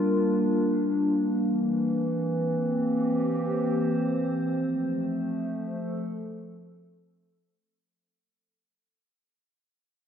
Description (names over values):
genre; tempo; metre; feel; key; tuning
ambient; free time; none; none; unclear; A4 = 442 Hz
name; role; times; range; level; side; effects
warbly tape-like pad; solo; 0.0-7.7 s; E3 to C5; -25 LUFS; equal; chorus, built-in reverb, tape echo
room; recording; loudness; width
wet concert hall reverb, RT60 2.4 s; none; -24 LUFS; side -8 dB against mid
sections
0.0-7.7 A section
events
fade-out 3.5-7.7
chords
0.0 Gm7; 1.4 C7; 4.5 F